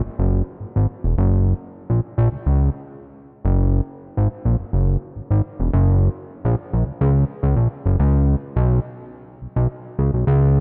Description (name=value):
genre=funk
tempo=106 BPM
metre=4/4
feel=straight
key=unclear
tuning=A4 = 439 Hz
part: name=fat analog bass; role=solo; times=0.0-10.6 s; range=Fb1 to Db2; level=-20 LUFS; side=equal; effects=none
room=light reverb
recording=rough home demo mix, nothing above 10.6 kHz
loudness=-20 LUFS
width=mono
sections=0.0-8.0 A section; 8.0-10.6 B section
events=none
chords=none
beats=0.03 0.60 | 1.17 1.74 2.31 2.88 | 3.45 4.02 4.58 5.15 | 5.72 6.29 6.86 7.43 | 7.99 8.56 9.13 9.70 | 10.27